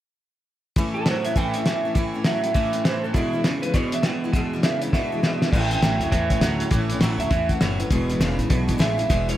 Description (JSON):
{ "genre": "rockabilly", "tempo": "202 BPM", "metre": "4/4", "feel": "swing 62% on 8ths", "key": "A major", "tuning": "A4 = 444 Hz", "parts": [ { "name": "picked steel-string acoustic guitar", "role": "accompaniment", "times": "0.8-9.4 s", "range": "E2 to E4", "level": "-28 LUFS", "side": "left 5 dB", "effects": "none" }, { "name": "twangy electric guitar", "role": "riff", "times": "0.8-9.4 s", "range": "E2 to F#3", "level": "-27 LUFS", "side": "right 3 dB", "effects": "analog chorus" }, { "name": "cloth-damped thuddy drum kit", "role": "drums", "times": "0.8-9.3 s", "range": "crash cymbal, hi-hat, kick drum, snare drum", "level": "-23 LUFS", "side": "equal", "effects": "none" }, { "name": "electric guitar through a small old amp", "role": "melody", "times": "0.9-9.4 s", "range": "E4 to G5", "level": "-27 LUFS", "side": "right 2 dB", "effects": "spring reverb, tape echo" }, { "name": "upright bass", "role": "bass", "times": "5.5-9.3 s", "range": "E1 to E2", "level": "-26 LUFS", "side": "equal", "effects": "none" } ], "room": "moderate small room ambience, RT60 0.5 s", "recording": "none", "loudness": "-20 LUFS", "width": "side -13 dB against mid", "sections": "0.8-5.5 A section; 5.5-9.4 B section", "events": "drum fill 4.9-5.5", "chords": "0.8 A; 3.1 E7; 5.5 A; 7.9 E7", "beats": "| 0.76 1.06 1.36 1.66 | 1.96 2.25 2.55 2.85 | 3.15 3.44 3.74 4.04 | 4.33 4.63 4.93 5.23 | 5.52 5.82 6.12 6.42 | 6.71 7.01 7.31 7.61 | 7.90 8.20 8.50 8.80 | 9.10" }